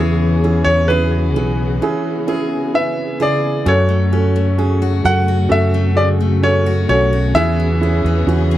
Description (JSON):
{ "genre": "pop ballad", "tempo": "65 BPM", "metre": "4/4", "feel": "straight", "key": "F# minor", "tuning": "A4 = 443 Hz", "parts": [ { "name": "bright grand piano", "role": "melody", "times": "0.0-8.6 s", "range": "B4 to F#5", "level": "-19 LUFS", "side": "left 1 dB", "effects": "none" }, { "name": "felt-muted upright piano", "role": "accompaniment", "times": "0.0-8.6 s", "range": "C#3 to B4", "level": "-20 LUFS", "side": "right 5 dB", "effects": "none" }, { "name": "warm studio string section", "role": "sustained chords", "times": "0.0-8.6 s", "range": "C#3 to G#4", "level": "-25 LUFS", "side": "left 2 dB", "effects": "none" }, { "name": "picked steel-string acoustic guitar", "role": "arpeggios", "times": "0.0-8.6 s", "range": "F#2 to G#4", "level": "-24 LUFS", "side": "left 9 dB", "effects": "none" }, { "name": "fingered electric bass", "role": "bass", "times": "0.0-8.6 s", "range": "B1 to F#2", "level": "-16 LUFS", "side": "equal", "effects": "none" } ], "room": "little or no reverb", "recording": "dry, close 1970s-style studio recording", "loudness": "-13 LUFS", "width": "side -13 dB against mid", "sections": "0.0-3.7 A section; 3.7-8.6 B section", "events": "break 1.8-3.7", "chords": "0.0 E6; 3.7 F#m; 7.4 E6" }